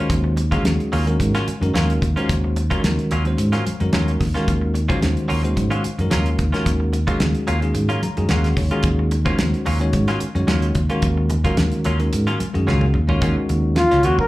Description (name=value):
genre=electric jazz fusion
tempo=110 BPM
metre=4/4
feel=straight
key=Eb dorian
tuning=A4 = 440 Hz
part: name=bell-like tine electric piano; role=accompaniment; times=0.0-14.2 s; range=Eb3 to Bb5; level=-23 LUFS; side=left 1 dB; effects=medium stereo tremolo, slapback echo
part: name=direct-recorded clean electric guitar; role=stabs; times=0.0-14.2 s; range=Gb3 to F4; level=-27 LUFS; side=right 1 dB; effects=wide subtle chorus, plate reverb, slapback echo
part: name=fingered electric bass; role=bass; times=0.1-14.2 s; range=Db2 to Ab2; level=-20 LUFS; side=equal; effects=none
part: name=damped 70s drum kit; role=drums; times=0.1-14.3 s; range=hi-hat, kick drum, snare drum, toms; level=-24 LUFS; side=equal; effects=none
part: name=congas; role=percussion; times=0.1-13.0 s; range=none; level=-29 LUFS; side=equal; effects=none
part: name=breathy trumpet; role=melody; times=13.8-14.3 s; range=F4 to Bb4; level=-15 LUFS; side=left 1 dB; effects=plate reverb
room=light reverb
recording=live gig heard through the venue's PA, club reverb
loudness=-17 LUFS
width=side -17 dB against mid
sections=0.0-13.2 A section; 13.2-14.3 B section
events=tine electric piano fill 7.8-8.9; drum fill 12.7-13.2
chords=0.0 Ebm9